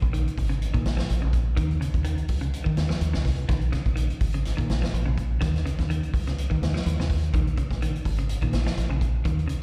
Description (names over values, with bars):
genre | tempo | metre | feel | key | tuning
afrobeat | 125 BPM | 4/4 | swing 54% on 16ths | Bb minor | A4 = 440 Hz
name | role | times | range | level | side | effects
clean electric guitar | arpeggios | 0.0-9.6 s | Db3 to F3 | -34 LUFS | equal | spring reverb, slapback echo
deep dub fingered electric bass | bass | 0.0-9.5 s | Ab1 to Eb3 | -28 LUFS | equal | none
vintage drum kit | drums | 0.0-9.6 s | hi-hat, kick drum, snare drum | -31 LUFS | equal | none
room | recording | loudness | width
small room reverb | live gig heard through the venue's PA, recital hall reverb | -25 LUFS | mono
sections
0.0-9.6 A section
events
none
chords
0.0 Bbm7; 1.6 N.C.; 3.5 Bbm7; 5.4 N.C.; 7.3 Bbm7